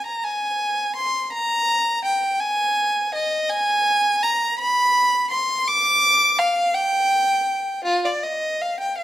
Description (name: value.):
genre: classical, baroque-style suite movement for unaccompanied violin.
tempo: 55 BPM (dotted quarters).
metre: 6/8.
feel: uneven beats, rubato.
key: unclear.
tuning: A4 = 440 Hz.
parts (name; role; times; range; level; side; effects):
warm violin; solo; 0.0-9.0 s; F4 to D6; -18 LUFS; equal; none.
room: moderate recital hall reverb, RT60 1.3 s.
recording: none.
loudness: -18 LUFS.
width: side -13 dB against mid.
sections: 0.0-9.0 A section.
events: none.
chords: none.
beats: 0.27 | 1.34 2.40 | 3.51 4.58 | 5.66 6.73 | 7.84 8.99.